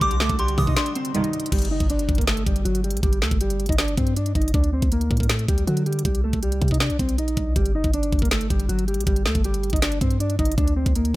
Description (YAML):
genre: hip hop, trap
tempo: 159 BPM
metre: 4/4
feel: half-time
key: G harmonic minor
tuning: A4 = 441 Hz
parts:
  - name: mellow electric guitar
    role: melody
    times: 0.0-11.2 s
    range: F#3 to Eb5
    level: -26 LUFS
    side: equal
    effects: low-pass filter, digital delay
  - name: delicate synth tine bell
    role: second line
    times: 0.0-1.5 s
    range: C6 to Eb6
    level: -26 LUFS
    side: equal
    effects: chorus, digital delay
  - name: granular cloud pad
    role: sustained chords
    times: 0.0-1.5 s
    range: C3 to Eb4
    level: -35 LUFS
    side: right 1 dB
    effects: built-in reverb
  - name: warm 808-style bass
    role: bass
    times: 0.0-11.1 s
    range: G1 to D3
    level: -24 LUFS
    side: equal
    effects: none
  - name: trap drum kit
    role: drums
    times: 0.0-11.1 s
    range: crash cymbal, handclaps, hi-hat, kick drum, snare drum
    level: -23 LUFS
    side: equal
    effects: none
  - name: dark symphonic string section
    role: stabs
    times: 0.6-1.3 s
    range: C2 to Eb3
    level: -26 LUFS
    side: right 3 dB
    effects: none
room: little or no reverb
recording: none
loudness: -19 LUFS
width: side -18 dB against mid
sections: 0.0-1.5 A section; 1.5-11.2 B section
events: break 0.8-1.5; filter sweep on clean electric guitar 1.5-11.2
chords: 0.0 Cm; 1.5 G5; 4.5 D; 6.0 Cm; 7.6 G5; 10.6 N.C.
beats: | 0.01 0.39 0.77 1.15 | 1.52 1.90 2.28 2.65 | 3.03 3.41 3.79 4.16 | 4.54 4.92 5.30 5.67 | 6.05 6.43 6.80 7.18 | 7.56 7.94 8.31 8.69 | 9.07 9.45 9.82 10.20 | 10.58 10.96